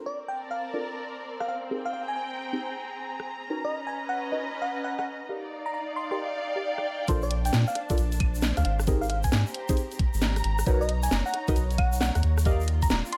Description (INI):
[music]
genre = UK garage, two-step garage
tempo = 134 BPM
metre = 4/4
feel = swing 65% on 16ths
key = Bb major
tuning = A4 = 440 Hz
[part]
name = deep mellow chord stab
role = stabs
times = 0.0-12.6 s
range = C4 to G5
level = -35 LUFS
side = equal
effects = chorus, phaser, vintage 12-bit sampler grit
[part]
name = dark symphonic string section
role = texture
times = 0.0-13.2 s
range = C4 to Bb5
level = -37 LUFS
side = equal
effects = sidechain pumping
[part]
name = bell-like FM electric piano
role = melody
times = 0.1-13.2 s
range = D5 to C6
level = -35 LUFS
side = equal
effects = chorus, delay
[part]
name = garage drum kit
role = drums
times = 1.4-13.2 s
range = claves, hi-hat, rim click, snare drum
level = -32 LUFS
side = equal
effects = low-pass filter on snare, studio reverb, low-pass filter on hats, low-pass filter on perc
[part]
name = soft dub sub bass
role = bass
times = 7.1-13.0 s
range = Eb1 to Bb2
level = -28 LUFS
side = equal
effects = none
[part]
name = electronic kick drum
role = drums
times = 7.1-12.9 s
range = none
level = -28 LUFS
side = equal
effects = studio reverb
[part]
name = egg shaker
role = percussion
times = 7.1-13.1 s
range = none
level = -44 LUFS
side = equal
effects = none
[sound]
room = light reverb, digital ambience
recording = none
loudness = -28 LUFS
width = mono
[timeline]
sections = 0.0-7.1 A section; 7.1-13.2 B section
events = filter sweep on drum 0.0-7.1; drop 7.1-13.2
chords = 0.0 Bbmaj9; 1.5 Abmaj9; 3.5 Bmaj9; 5.3 Ebmaj9; 7.1 Bbmaj9; 8.6 Abmaj9; 10.7 Bmaj9; 12.5 Ebmaj9